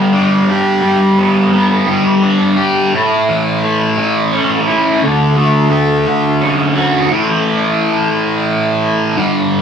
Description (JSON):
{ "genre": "rock", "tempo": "58 BPM (dotted quarters)", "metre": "6/8", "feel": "straight", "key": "unclear", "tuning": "A4 = 436 Hz", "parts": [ { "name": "fuzz guitar", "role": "solo", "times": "0.0-9.6 s", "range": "G2 to G4", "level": "-11 LUFS", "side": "equal", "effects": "distortion, phaser" } ], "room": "moderate studio reverb, RT60 0.9 s", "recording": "band playing live in one room", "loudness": "-11 LUFS", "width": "side -7 dB against mid", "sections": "0.0-7.1 A section; 7.1-9.6 B section", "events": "none", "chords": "0.0 G; 2.9 A; 5.0 Dmaj7; 7.1 A5" }